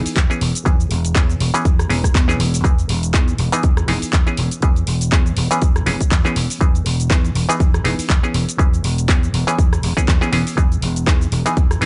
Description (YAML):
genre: filtered disco house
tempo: 121 BPM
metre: 4/4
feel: swing 56% on 16ths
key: unclear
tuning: A4 = 440 Hz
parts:
  - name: muted clav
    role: accompaniment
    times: 0.0-11.9 s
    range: E3 to G#4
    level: -24 LUFS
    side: equal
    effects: phaser, sidechain pumping
  - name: vintage slap bass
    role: bass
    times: 0.1-11.9 s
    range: E1 to E2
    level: -22 LUFS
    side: equal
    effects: sidechain pumping
  - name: house drum kit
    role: drums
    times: 0.1-11.9 s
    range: handclaps, hi-hat, rim click, shaker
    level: -27 LUFS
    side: equal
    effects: sidechain pumping on hats, sidechain pumping on perc
  - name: electronic kick drum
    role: drums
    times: 0.2-11.7 s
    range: none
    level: -18 LUFS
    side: equal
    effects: none
room: little or no reverb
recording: nothing above 10.6 kHz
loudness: -17 LUFS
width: mono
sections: 0.0-11.9 A section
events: none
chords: 0.4 C#m7/E; 2.6 Emaj7; 4.4 C#m7/E; 6.6 Emaj7; 8.3 C#m7/E; 10.6 Emaj7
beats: 0.16 | 0.66 1.16 1.65 2.15 | 2.64 3.14 3.63 4.13 | 4.63 5.12 5.62 6.11 | 6.61 7.11 7.60 8.10 | 8.59 9.09 9.59 10.08 | 10.58 11.07 11.57